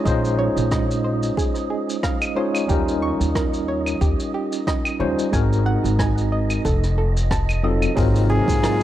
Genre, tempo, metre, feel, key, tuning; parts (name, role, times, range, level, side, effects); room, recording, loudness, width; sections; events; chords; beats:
sunset chillout; 91 BPM; 4/4; swing 55% on 16ths; Bb minor; A4 = 440 Hz
tine electric piano; accompaniment; 0.0-8.8 s; Gb3 to Db5; -23 LUFS; equal; fast stereo tremolo, auto-pan, analog delay
soft round pluck; arpeggios; 0.0-8.8 s; G4 to Db6; -29 LUFS; right 3 dB; chorus, analog delay
wind-like tuned noise texture; texture; 0.0-8.8 s; Eb5; -34 LUFS; right 7 dB; built-in reverb
upright bass; bass; 0.1-8.8 s; F1 to Eb2; -21 LUFS; equal; tube saturation
electronic kick drum; drums; 0.1-8.6 s; -24 LUFS; equal
soft brush drum kit; drums; 0.1-8.8 s; claves, hi-hat, rim click, shaker; -29 LUFS; equal
lush unison pad; sustained chords; 8.0-8.8 s; C3 to F4; -28 LUFS; left 1 dB; chorus
clear flugelhorn; melody; 8.3-8.8 s; Ab4; -22 LUFS; left 2 dB
little or no reverb; dry, gritty hardware recording; -18 LUFS; side -13 dB against mid
0.0-8.0 A section
0.0 Bbm11; 2.7 Eb7; 5.3 Ab7; 6.7 F7b9; 8.0 Ab13
| 0.06 0.72 1.38 2.03 | 2.69 3.35 4.01 4.67 | 5.33 5.99 6.65 7.31 | 7.97 8.63